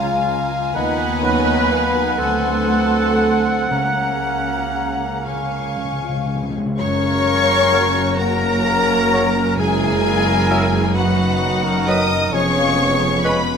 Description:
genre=classical, slow romantic movement for symphony orchestra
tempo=38-44 BPM (dotted quarters)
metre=6/8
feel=rubato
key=F# major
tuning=A4 = 439 Hz
part: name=rich chamber violin section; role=melody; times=0.0-13.6 s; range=F#5 to D#6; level=-24 LUFS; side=left 2 dB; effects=none
part: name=clear chamber violin section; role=second line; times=0.0-13.6 s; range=F#4 to A#5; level=-28 LUFS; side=left 3 dB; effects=none
part: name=hollow small flute group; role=second line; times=0.0-13.6 s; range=F#4 to C6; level=-25 LUFS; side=left 3 dB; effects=none
part: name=mellow cor anglais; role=second line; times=0.0-13.4 s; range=C#5 to F#5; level=-28 LUFS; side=right 3 dB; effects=none
part: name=warm bassoon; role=accompaniment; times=0.0-13.4 s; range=F#3 to E#4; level=-28 LUFS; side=right 1 dB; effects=none
part: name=bright trombone section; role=sustained chords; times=0.0-13.5 s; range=C#3 to E#4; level=-28 LUFS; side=right 4 dB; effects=none
part: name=concert harp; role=arpeggios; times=0.0-13.6 s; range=E#2 to C#6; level=-28 LUFS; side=left 10 dB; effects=none
part: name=mellow trumpet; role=stabs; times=0.0-13.4 s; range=G#4 to G#5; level=-25 LUFS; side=right 1 dB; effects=none
part: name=rich chamber double bass section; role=bass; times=0.0-13.6 s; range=E#1 to D#2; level=-25 LUFS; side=right 4 dB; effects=none
part: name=bright clarinet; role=second line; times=0.7-13.4 s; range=C#4 to B4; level=-29 LUFS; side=left 1 dB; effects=none
part: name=rich chamber viola section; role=accompaniment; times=0.7-13.6 s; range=C#3 to B4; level=-28 LUFS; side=right 3 dB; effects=none
part: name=dark French horn section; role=sustained chords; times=0.8-13.6 s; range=C#3 to D#4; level=-24 LUFS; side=left 3 dB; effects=none
part: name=dark chamber cello section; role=bass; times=0.8-13.6 s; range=E#2 to B3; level=-25 LUFS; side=right 2 dB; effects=none
part: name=timpani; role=percussion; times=3.7-6.7 s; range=C#3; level=-26 LUFS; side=left 2 dB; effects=none
room=moderate scoring stage reverb, RT60 1.7 s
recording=none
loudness=-15 LUFS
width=side -6 dB against mid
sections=0.0-6.8 A section; 6.8-13.6 B section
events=timpani fill 5.3-6.8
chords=0.0 C#; 0.8 B/D#; 2.2 D7; 3.7 F#/C#; 5.3 C#; 6.8 F#; 9.6 F#7; 11.0 B/F#; 12.3 C#7/E#

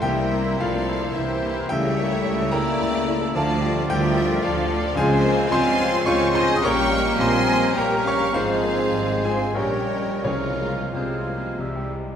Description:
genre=classical, romantic movement for piano and orchestra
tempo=84-114 BPM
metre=3/4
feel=rubato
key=F minor from 5.0 s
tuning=A4 = 440 Hz
part: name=clear grand piano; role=melody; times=0.0-12.2 s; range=Bb1 to Eb6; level=-24 LUFS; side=left 2 dB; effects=none
part: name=warm studio violin section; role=melody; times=0.0-11.9 s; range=F4 to G5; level=-31 LUFS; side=left 4 dB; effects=none
part: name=bright small flute group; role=second line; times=0.0-11.9 s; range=Ab4 to Bb5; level=-31 LUFS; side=right 2 dB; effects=none
part: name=clear symphonic violin section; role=second line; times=0.0-11.9 s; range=C5 to Db6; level=-32 LUFS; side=equal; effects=none
part: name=warm clarinet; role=second line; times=0.0-11.9 s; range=E4 to Bb4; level=-32 LUFS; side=equal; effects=none
part: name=warm cor anglais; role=second line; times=0.0-11.9 s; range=Bb4 to F5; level=-31 LUFS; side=right 2 dB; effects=none
part: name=dark bassoon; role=accompaniment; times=0.0-11.9 s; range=F3 to Bb3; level=-32 LUFS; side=right 2 dB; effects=none
part: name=warm symphonic viola section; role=accompaniment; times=0.0-12.2 s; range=G3 to Ab4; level=-31 LUFS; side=right 1 dB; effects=none
part: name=dark trombone section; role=sustained chords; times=0.0-11.9 s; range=Db3 to C4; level=-32 LUFS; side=right 4 dB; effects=none
part: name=mellow French horn section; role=sustained chords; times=0.0-11.9 s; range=C3 to Db4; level=-28 LUFS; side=left 4 dB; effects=none
part: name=rich symphonic cello section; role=bass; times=0.0-12.2 s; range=Ab2 to D3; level=-31 LUFS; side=right 3 dB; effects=none
part: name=rich symphonic double bass section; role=bass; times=0.0-12.2 s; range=Ab1 to D2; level=-31 LUFS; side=right 4 dB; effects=none
part: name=timpani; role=percussion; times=0.0-0.8, 10.3-11.2 s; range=C3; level=-35 LUFS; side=left 2 dB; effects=none
room=moderate scoring stage reverb, RT60 1.7 s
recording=none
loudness=-19 LUFS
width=side -8 dB against mid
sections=0.0-12.2 A section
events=none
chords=0.0 C7; 1.7 A7/C#; 3.3 Dm; 5.0 Dbmaj7; 6.6 Gdim/Bb; 8.3 Fm/Ab; 9.6 Gdim/Bb; 10.3 Fm/C; 11.6 C

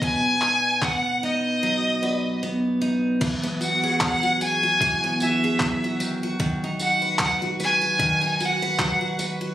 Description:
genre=acoustic pop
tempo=75 BPM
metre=4/4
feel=swing 55% on 16ths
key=E major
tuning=A4 = 441 Hz
part: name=clear violin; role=melody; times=0.0-9.2 s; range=D#5 to G#5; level=-22 LUFS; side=equal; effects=none
part: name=clear upright piano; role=accompaniment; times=0.0-3.3 s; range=B3 to D#5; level=-36 LUFS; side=left 1 dB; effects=none
part: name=picked steel-string acoustic guitar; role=accompaniment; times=0.0-9.5 s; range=B2 to B4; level=-25 LUFS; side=equal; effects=none
part: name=dusty soul sampler-style drum kit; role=drums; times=0.0-9.4 s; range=crash cymbal, handclaps, kick drum, tambourine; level=-27 LUFS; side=equal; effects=none
room=moderate studio reverb, RT60 0.6 s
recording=recorded on a phone in the room, studio reverb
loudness=-20 LUFS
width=side -12 dB against mid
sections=0.0-3.2 A section; 3.2-9.5 B section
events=none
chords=0.0 B; 3.2 Eadd9; 6.0 B/D#

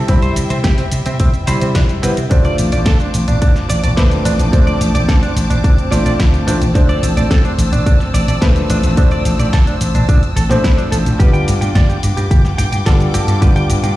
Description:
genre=nu-disco, nu disco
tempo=108 BPM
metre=4/4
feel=straight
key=D dorian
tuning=A4 = 440 Hz
part: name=bright concert grand piano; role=accompaniment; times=0.0-14.0 s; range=F3 to B5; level=-20 LUFS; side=equal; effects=sidechain pumping, low-pass filter, ping-pong delay
part: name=rich symphonic string section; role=sustained chords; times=0.0-14.0 s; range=C4 to E6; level=-26 LUFS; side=left 1 dB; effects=sidechain pumping
part: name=vintage slap bass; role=bass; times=0.0-13.9 s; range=G1 to C3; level=-16 LUFS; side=equal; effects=none
part: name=direct-recorded clean electric guitar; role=riff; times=0.1-13.9 s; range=C4 to G5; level=-24 LUFS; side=right 3 dB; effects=analog chorus, vintage 12-bit sampler grit, ping-pong delay
part: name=electronic kick drum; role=drums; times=0.1-13.5 s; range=none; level=-12 LUFS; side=equal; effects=none
part: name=house drum kit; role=drums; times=0.1-13.9 s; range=cabasa, hi-hat, snare drum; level=-24 LUFS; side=equal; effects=none
room=little or no reverb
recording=played on a big sound system in a bare room, large studio reverb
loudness=-11 LUFS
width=side -16 dB against mid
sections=0.0-14.0 A section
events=none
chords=0.0 Cmaj7; 2.3 Dm7; 11.2 G7

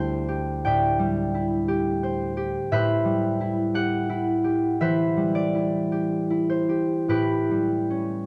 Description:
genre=classical, solo harp piece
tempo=50-60 BPM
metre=4/4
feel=rubato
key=unclear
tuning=A4 = 440 Hz
part: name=concert harp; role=solo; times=0.0-8.3 s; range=D2 to A5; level=-24 LUFS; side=equal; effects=none
room=moderate recital hall reverb, RT60 1.7 s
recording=close, detailed microphones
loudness=-24 LUFS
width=mono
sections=0.0-8.3 A section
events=none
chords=0.0 D9sus4; 2.7 Am9; 7.1 A9

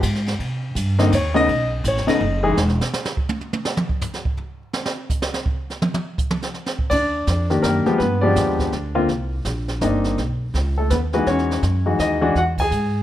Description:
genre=jazz piano trio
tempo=166 BPM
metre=3/4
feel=swing 63% on 8ths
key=unclear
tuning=A4 = 436 Hz
part: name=upright bass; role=bass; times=0.0-2.8, 6.9-13.0 s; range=Fb1 to C3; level=-22 LUFS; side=right 1 dB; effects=none
part: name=jazz brush drum kit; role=drums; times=0.0-13.0 s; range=brushed snare drum, crash cymbal, hi-hat, kick drum, ride cymbal, snare drum, toms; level=-25 LUFS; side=right 2 dB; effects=none
part: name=warm baby grand piano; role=melody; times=1.0-2.6, 6.9-13.0 s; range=Db3 to G#5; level=-19 LUFS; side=left 2 dB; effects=none
room=light reverb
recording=none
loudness=-18 LUFS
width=side -12 dB against mid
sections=0.0-6.9 A section; 6.9-13.0 B section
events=grand piano solo 0.0-6.9; drum solo 2.6-6.9; band accent 12.5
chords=0.4 Cm; 1.5 B9; 2.6 N.C.; 6.9 Ebmaj7; 8.0 G7b9; 9.1 Cm9; 10.2 B9; 11.3 Emaj9; 12.3 E

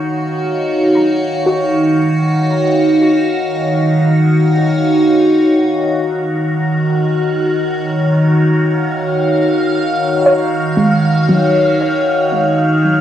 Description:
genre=ambient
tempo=free time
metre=none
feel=none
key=Eb minor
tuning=A4 = 442 Hz
part: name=evolving wavetable pad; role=sustained chords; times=0.0-13.0 s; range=Eb3 to F5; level=-12 LUFS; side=equal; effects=phaser, built-in reverb, cassette tape
part: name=soft round pluck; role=arpeggios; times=0.0-3.6, 10.3-13.0 s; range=Gb3 to Bb5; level=-17 LUFS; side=equal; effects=wide subtle chorus, cassette tape, tape echo
part: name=wind-like tuned noise texture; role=texture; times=6.1-13.0 s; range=F6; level=-25 LUFS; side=right 3 dB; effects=built-in reverb, cassette tape
room=wet studio reverb, RT60 0.6 s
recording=home recording on cassette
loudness=-12 LUFS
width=side -10 dB against mid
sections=0.0-5.6 A section; 5.6-13.0 B section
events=none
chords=0.0 Ebm7

